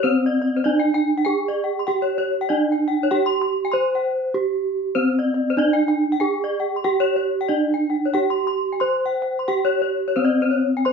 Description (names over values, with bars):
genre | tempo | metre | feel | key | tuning
gamelan | 87-97 BPM | 4/4 | straight | C pelog | A4 = 440 Hz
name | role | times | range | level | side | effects
gamelan-type bronze metallophone | melody | 0.0-10.9 s | C4 to C5 | -20 LUFS | right 2 dB | none
gamelan-type bronze metallophone | arpeggios | 0.0-10.9 s | C5 to C6 | -23 LUFS | left 6 dB | none
room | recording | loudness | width
moderate studio reverb, RT60 0.8 s | band playing live in one room, nothing above 7.6 kHz | -18 LUFS | side -5 dB against mid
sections
0.0-10.2 A section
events
break 4.0-5.0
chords
none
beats
| 0.03 0.64 1.26 1.88 | 2.49 3.11 3.72 4.34 | 4.95 5.57 6.20 6.84 | 7.49 8.14 8.81 9.48 | 10.16 10.85